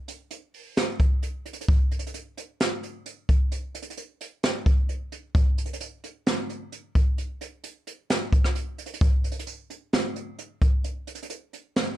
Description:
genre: hip hop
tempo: 131 BPM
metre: 4/4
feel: half-time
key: none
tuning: none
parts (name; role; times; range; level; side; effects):
- jazz brush drum kit; drums; 0.1-11.9 s; hi-hat, kick drum, rim click, snare drum; -23 LUFS; equal; vintage 12-bit sampler grit
room: light reverb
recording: none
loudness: -23 LUFS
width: side -14 dB against mid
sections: 0.0-1.7 A section; 1.7-12.0 B section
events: none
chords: none

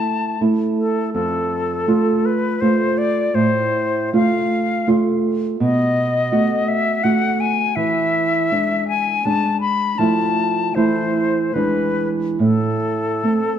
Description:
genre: romantic duo for flute and classical guitar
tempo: 70-84 BPM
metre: 3/4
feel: rubato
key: unclear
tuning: A4 = 440 Hz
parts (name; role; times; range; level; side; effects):
- silver concert flute; melody; 0.0-13.6 s; A4 to B5; -20 LUFS; left 4 dB; none
- nylon-string guitar; accompaniment; 0.0-13.6 s; F2 to F#4; -18 LUFS; right 2 dB; none
room: wet recital hall reverb, RT60 1.5 s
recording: dark, warm production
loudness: -16 LUFS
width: side -9 dB against mid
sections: 0.0-13.6 A section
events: none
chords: 0.0 A5; 1.1 F; 3.3 F/A; 5.6 B7; 7.8 E7; 10.0 Fmaj7; 10.8 Am/E; 11.6 E7; 12.4 Am

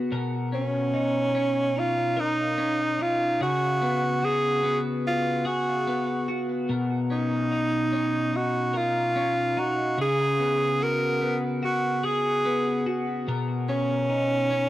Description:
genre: dream pop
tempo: 73 BPM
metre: 4/4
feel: straight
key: B lydian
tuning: A4 = 440 Hz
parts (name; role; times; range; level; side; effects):
- twelve-string electric guitar; arpeggios; 0.0-14.7 s; B2 to A#4; -27 LUFS; left 2 dB; wide subtle chorus, analog delay
- clear tenor saxophone; melody; 0.5-14.7 s; C#4 to A#4; -25 LUFS; right 1 dB; analog delay
room: moderate studio reverb, RT60 0.6 s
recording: dry, gritty hardware recording, transformer saturation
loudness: -23 LUFS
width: side -14 dB against mid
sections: 0.0-14.7 A section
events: none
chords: 0.1 Bmaj9; 3.4 C#7sus4; 6.7 Bmaj9; 10.0 C#7sus4; 13.3 Bmaj9

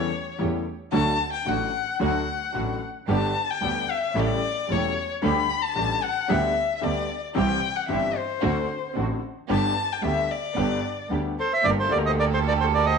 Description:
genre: tango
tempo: 112 BPM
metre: 4/4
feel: rubato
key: G major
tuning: A4 = 445 Hz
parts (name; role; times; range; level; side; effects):
- dark violin; second line; 0.0-13.0 s; A4 to B5; -27 LUFS; left 6 dB; none
- clear concert grand piano; accompaniment; 0.0-13.0 s; E1 to G4; -29 LUFS; left 6 dB; none
- dark studio string section; stabs; 0.0-13.0 s; A3 to A4; -31 LUFS; right 13 dB; none
- clear double bass; bass; 0.0-13.0 s; E1 to E2; -28 LUFS; right 4 dB; none
- bandoneon; melody; 11.4-13.0 s; C5 to E5; -22 LUFS; right 5 dB; none
room: wet echo chamber reverb, RT60 1.3 s, small room ambience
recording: 1960s-style stereo with parts hard left and right, nothing above 10.3 kHz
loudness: -22 LUFS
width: side -5 dB against mid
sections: 0.0-11.6 A section; 11.6-13.0 B section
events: violin solo 0.0-11.6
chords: 0.0 A7/E; 0.9 D; 3.1 G; 4.2 A7; 5.2 Dsus4; 6.3 G/D; 7.4 C; 8.4 D7; 9.5 G; 11.6 Gmadd9

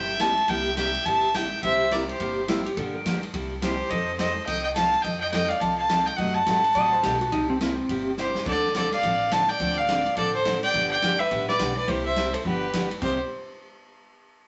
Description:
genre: country, western swing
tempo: 211 BPM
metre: 4/4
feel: swing 62% on 8ths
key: C mixolydian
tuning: A4 = 440 Hz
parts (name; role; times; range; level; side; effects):
- clear fiddle; melody; 0.0-13.2 s; B4 to A5; -27 LUFS; equal; none
- bright fiddle; second line; 0.0-13.2 s; G4 to F#5; -33 LUFS; equal; none
- picked steel-string acoustic guitar; accompaniment; 0.0-13.2 s; C3 to A4; -32 LUFS; equal; none
- upright bass; bass; 0.0-13.2 s; G1 to F#2; -40 LUFS; equal; none
- swinging big-band drum kit; drums; 0.2-13.1 s; crash cymbal, hi-hat, kick drum, ride cymbal, snare drum, splash cymbal; -37 LUFS; equal; none
- clean lap steel guitar; second line; 2.5-3.2, 6.8-8.1, 13.0-13.2 s; C4 to D#5; -31 LUFS; equal; none
room: wet studio reverb, RT60 0.6 s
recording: nothing above 8.0 kHz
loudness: -25 LUFS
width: mono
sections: 0.0-13.0 A section; 13.0-14.2 B section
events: drum fill 8.2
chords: 0.0 C7; 2.8 Gm7; 3.3 C7; 3.9 F7; 6.2 F#dim7; 7.3 C7; 8.5 Dm7; 10.7 G7; 11.9 C7; 12.4 G7; 13.0 C7

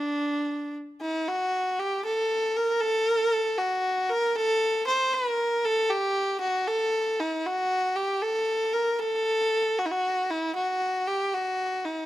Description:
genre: persian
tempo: 77 BPM (dotted quarters)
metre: 6/8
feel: straight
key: unclear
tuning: A4 = 441 Hz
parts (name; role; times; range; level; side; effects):
- clear kamancheh; solo; 0.0-12.1 s; D4 to C5; -24 LUFS; equal; none
room: light reverb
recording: close, detailed microphones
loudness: -24 LUFS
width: side -14 dB against mid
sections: 0.0-1.3 A section; 1.3-12.1 B section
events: none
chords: none

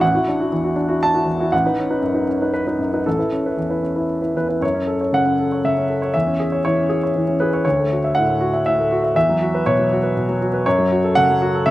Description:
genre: classical, contemporary piece for solo grand piano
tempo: 120 BPM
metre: 3/4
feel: rubato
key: unclear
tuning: A4 = 440 Hz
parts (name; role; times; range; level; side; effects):
- clear grand piano; solo; 0.0-11.7 s; A1 to A5; -16 LUFS; equal; slapback echo
room: little or no reverb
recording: recorded outdoors, with no room sound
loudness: -16 LUFS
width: side -16 dB against mid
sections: 0.0-4.6 A section; 4.6-11.7 B section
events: none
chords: 0.0 Dadd9/A; 1.5 Badd9/A; 3.1 Aadd9; 4.6 F#m; 6.1 C#m/E; 7.6 Dadd9; 9.2 Esus2; 10.7 F#m

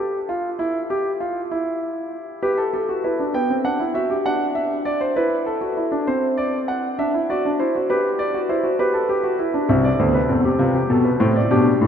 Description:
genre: classical, baroque-style 4-part fugue for grand piano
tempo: 66 BPM (dotted quarters)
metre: 12/8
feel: straight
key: C major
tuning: A4 = 440 Hz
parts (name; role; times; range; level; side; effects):
- warm grand piano; solo; 0.0-11.9 s; C2 to G5; -18 LUFS; equal; none
room: wet cathedral reverb, RT60 5.3 s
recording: in a vast, echoing space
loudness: -18 LUFS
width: side -8 dB against mid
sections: 0.0-11.9 A section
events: none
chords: 0.0 N.C.; 2.4 G; 4.3 D; 6.1 D7/C; 7.9 G; 9.7 C

